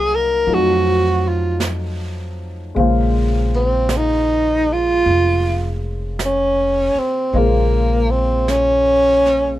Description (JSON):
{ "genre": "jazz ballad", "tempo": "52 BPM", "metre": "4/4", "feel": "swing 66% on 8ths", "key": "Bb minor", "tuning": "A4 = 439 Hz", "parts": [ { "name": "breathy tenor saxophone", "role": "melody", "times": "0.0-9.6 s", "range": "Ab3 to Bb4", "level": "-16 LUFS", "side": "equal", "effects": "none" }, { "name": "warm upright piano", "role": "accompaniment", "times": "0.0-9.6 s", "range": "Db3 to C5", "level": "-23 LUFS", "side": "left 3 dB", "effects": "none" }, { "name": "upright bass", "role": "bass", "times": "0.0-9.6 s", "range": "F1 to F2", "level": "-20 LUFS", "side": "equal", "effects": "none" }, { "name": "jazz brush drum kit", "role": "drums", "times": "0.5-9.6 s", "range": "brushed snare drum, hi-hat, snare drum", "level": "-30 LUFS", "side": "right 4 dB", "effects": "none" } ], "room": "little or no reverb", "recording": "minimal, uncompressed stereo recording", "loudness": "-14 LUFS", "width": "side -14 dB against mid", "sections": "0.0-9.6 A section", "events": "none", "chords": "0.5 F7b9; 2.8 Bbm9" }